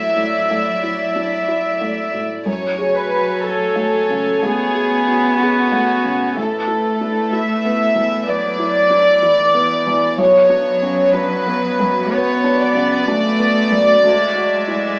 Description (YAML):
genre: neoclassical piano and strings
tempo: 62 BPM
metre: 4/4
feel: rubato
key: F# minor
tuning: A4 = 440 Hz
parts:
  - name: warm studio violin section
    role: melody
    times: 0.0-15.0 s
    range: F#4 to E5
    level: -19 LUFS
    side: equal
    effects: none
  - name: warm cello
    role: second line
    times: 0.0-15.0 s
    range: E3 to B3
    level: -24 LUFS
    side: equal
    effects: none
  - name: felt-muted upright piano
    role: accompaniment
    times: 0.0-15.0 s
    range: A1 to A4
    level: -26 LUFS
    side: equal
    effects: none
  - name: rich chamber string section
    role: sustained chords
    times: 0.0-15.0 s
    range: F#3 to G#5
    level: -29 LUFS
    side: equal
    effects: none
room: moderate large studio reverb, RT60 0.8 s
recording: band playing live in one room, small speaker sound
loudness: -17 LUFS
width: mono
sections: 0.0-15.0 A section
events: none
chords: 0.0 Dadd9; 2.5 F#madd9; 6.4 Asus2; 10.2 Bmadd9; 14.0 Dadd9